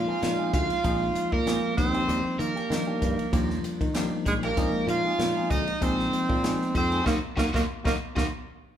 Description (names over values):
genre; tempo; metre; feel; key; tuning
electric jazz fusion; 96 BPM; 4/4; swing 54% on 16ths; unclear; A4 = 435 Hz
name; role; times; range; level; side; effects
breathy tenor saxophone; melody; 0.0-8.2 s; Ab3 to F4; -28 LUFS; right 2 dB; none
crunchy overdriven guitar; second line; 0.0-8.3 s; Gb4 to F5; -34 LUFS; equal; spring reverb
bell-like tine electric piano; accompaniment; 0.0-8.2 s; F3 to F4; -31 LUFS; left 2 dB; fast stereo tremolo
modern bright fingered electric bass; bass; 0.0-8.3 s; Bb1 to Eb3; -32 LUFS; equal; none
electric guitar with an envelope filter; stabs; 0.1-8.2 s; F3 to Ab4; -38 LUFS; right 1 dB; none
crisp fusion drum kit; drums; 0.2-8.3 s; hi-hat, kick drum, ride cymbal, snare drum; -30 LUFS; equal; none
room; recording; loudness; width
moderate large studio reverb, RT60 1.2 s; band playing live in one room; -24 LUFS; side -10 dB against mid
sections
0.0-8.8 A section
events
band accent 7.1-8.8; drum fill 8.3-8.8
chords
0.0 Bb9sus4; 1.8 Ebmaj9; 4.6 Bb9sus4; 7.1 Ebmadd9